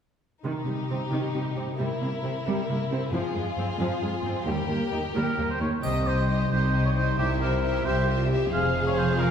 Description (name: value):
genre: cinematic, heroic adventure film score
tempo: 89 BPM (dotted quarters)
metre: 6/8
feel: straight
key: unclear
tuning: A4 = 440 Hz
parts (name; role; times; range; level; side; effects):
- rich chamber violin section; second line; 0.4-9.3 s; Eb4 to C5; -32 LUFS; left 4 dB; none
- rich symphonic viola section; accompaniment; 0.4-9.3 s; Eb3 to Ab4; -32 LUFS; right 1 dB; none
- rich symphonic cello section; bass; 0.4-9.3 s; C2 to C3; -29 LUFS; right 1 dB; none
- warm symphonic violin section; melody; 0.5-9.3 s; G4 to F5; -35 LUFS; left 2 dB; none
- mellow oboe; second line; 5.2-9.3 s; G4 to F5; -29 LUFS; right 2 dB; none
- concert harp; arpeggios; 5.8-9.3 s; C3 to Ab4; -30 LUFS; left 3 dB; none
- rich symphonic double bass section; bass; 5.8-9.3 s; F1 to C2; -28 LUFS; right 2 dB; none
- triangle; percussion; 5.8-6.7 s; none; -49 LUFS; left 2 dB; none
room: wet scoring stage reverb, RT60 1.5 s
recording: heard from further back in the room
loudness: -24 LUFS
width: side -8 dB against mid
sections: 0.4-5.8 A section; 5.8-9.3 B section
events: none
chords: 0.4 Cm; 1.8 C7; 3.1 Fm; 4.5 Eb; 5.8 Cm; 7.2 C7; 8.5 Fm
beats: | 0.44 1.12 | 1.80 2.47 | 3.13 3.80 | 4.47 5.14 | 5.83 6.51 | 7.18 7.85 | 8.52 9.20